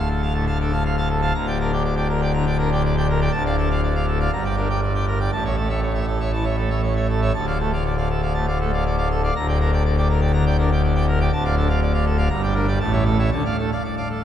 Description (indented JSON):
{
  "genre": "classical, organ toccata",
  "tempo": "120 BPM",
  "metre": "4/4",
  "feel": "straight",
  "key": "D minor",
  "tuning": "A4 = 440 Hz",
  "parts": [
    { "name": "pipe organ, full organ", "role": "solo", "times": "0.0-14.2 s", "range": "D1 to Bb5", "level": "-18 LUFS", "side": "equal", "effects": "none" }
  ],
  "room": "wet cathedral reverb, RT60 4.6 s",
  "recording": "dark, warm production",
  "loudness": "-18 LUFS",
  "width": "side -10 dB against mid",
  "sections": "0.0-14.2 A section",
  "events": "none",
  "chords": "0.0 Dm; 1.4 Gm/D; 3.3 Dm; 4.3 Gm; 5.3 A; 7.3 Dm; 9.3 Gm/D; 11.3 Dm; 12.3 Gm; 12.8 A; 13.3 Dm"
}